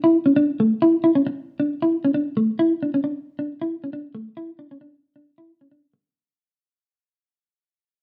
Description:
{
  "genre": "highlife",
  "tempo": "134 BPM",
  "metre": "4/4",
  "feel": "swing 54% on 16ths",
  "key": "A major",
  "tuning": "A4 = 440 Hz",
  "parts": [
    { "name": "mellow electric guitar", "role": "solo", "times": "0.0-6.0 s", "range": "A3 to E4", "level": "-21 LUFS", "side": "equal", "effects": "none" }
  ],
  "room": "moderate studio reverb, RT60 0.7 s",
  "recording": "band playing live in one room",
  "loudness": "-21 LUFS",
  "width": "mono",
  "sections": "0.0-6.2 A section",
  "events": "fade-out 0.0-6.2",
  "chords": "none",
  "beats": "0.36 | 0.80 1.25 1.69 2.14 | 2.58 3.03 3.48 3.92 | 4.37 4.82 5.26 5.71"
}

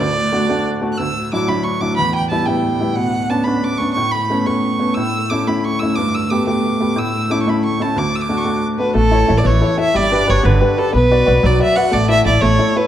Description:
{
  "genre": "celtic folk, Celtic jig",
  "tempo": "120 BPM (dotted quarters)",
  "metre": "6/8",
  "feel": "straight",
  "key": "D major",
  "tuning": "A4 = 440 Hz",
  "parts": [
    { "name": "rich fiddle", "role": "melody", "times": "0.0-12.9 s", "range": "A4 to F#6", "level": "-18 LUFS", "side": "right 1 dB", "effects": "none" },
    { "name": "bright upright piano", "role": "accompaniment", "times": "0.0-12.9 s", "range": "D2 to D5", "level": "-18 LUFS", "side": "left 1 dB", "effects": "none" },
    { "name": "clear studio string section", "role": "drone", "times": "0.0-9.0 s", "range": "D2 to A2", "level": "-25 LUFS", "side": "right 2 dB", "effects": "none" },
    { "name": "upright bass", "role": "bass", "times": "9.0-12.6 s", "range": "G1 to B1", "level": "-16 LUFS", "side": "equal", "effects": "none" }
  ],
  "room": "wet recital hall reverb, RT60 1.5 s",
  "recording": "dark, warm production",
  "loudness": "-14 LUFS",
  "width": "side -11 dB against mid",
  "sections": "1.0-9.0 A section; 9.0-12.9 B section",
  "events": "none",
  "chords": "0.0 D; 1.0 Dadd9; 2.0 Em; 3.0 Bmadd9; 5.0 A; 6.0 Gadd9; 7.0 A; 8.0 D; 9.0 A; 9.9 G; 10.9 Bm; 11.9 Asus4",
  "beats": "0.48 | 0.98 1.48 | 1.97 2.47 | 2.97 3.47 | 3.97 4.47 | 4.97 5.47 | 5.97 6.46 | 6.96 7.46 | 7.96 8.46 | 8.95 9.45 | 9.95 10.44 | 10.94 11.43 | 11.93 12.42"
}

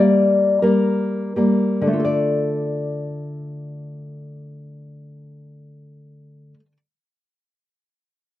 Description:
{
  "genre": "romantic piece for solo classical guitar",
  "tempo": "42 BPM",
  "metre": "3/4",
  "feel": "rubato",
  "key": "D minor",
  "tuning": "A4 = 440 Hz",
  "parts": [
    { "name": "nylon-string guitar", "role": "solo", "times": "0.0-6.8 s", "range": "D3 to D5", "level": "-18 LUFS", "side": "left 1 dB", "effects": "none" }
  ],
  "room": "light reverb",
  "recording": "none",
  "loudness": "-17 LUFS",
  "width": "side -14 dB against mid",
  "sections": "0.0-2.1 A section; 2.1-6.3 B section",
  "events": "slowing down 0.0-2.1",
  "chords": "0.0 Gm; 2.1 Dm",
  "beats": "0.60 | 2.07 3.46 4.89"
}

